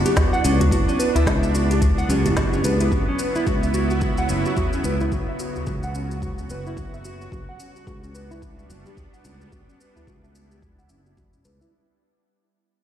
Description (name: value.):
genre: organic downtempo.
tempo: 109 BPM.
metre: 4/4.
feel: swing 59% on 16ths.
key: unclear.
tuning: A4 = 442 Hz.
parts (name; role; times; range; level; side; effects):
muted felt-like synth keys; accompaniment; 0.0-2.9 s; F#3 to G4; -28 LUFS; right 4 dB; chorus, sidechain pumping, digital delay.
bowed-like drone; sustained chords; 0.0-11.7 s; C#3 to F#5; -28 LUFS; right 1 dB; built-in reverb, sidechain pumping.
nylon-string guitar; arpeggios; 0.0-11.7 s; C#4 to F#5; -26 LUFS; equal; low-pass filter, digital delay.
sustaining fretless electric bass; bass; 0.0-11.6 s; E1 to C#2; -24 LUFS; equal; analog chorus, sidechain pumping.
organic electronic drum kit; drums; 0.1-11.7 s; hi-hat, shaker, snare drum; -31 LUFS; left 1 dB; overdrive.
electronic kick drum; drums; 0.2-11.3 s; none; -25 LUFS; left 1 dB; none.
udu; percussion; 0.2-10.8 s; none; -24 LUFS; equal; none.
room: moderate echo chamber reverb, RT60 1.3 s, digital ambience.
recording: played on a big sound system in a bare room, stone room reverb.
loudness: -19 LUFS.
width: side -10 dB against mid.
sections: 0.0-11.7 A section.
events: fade-out 0.0-11.7; filter sweep on nylon-string guitar 0.0-11.7.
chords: 0.0 Gmaj7/F#; 2.9 F#7sus4; 7.3 Gmaj7/F#.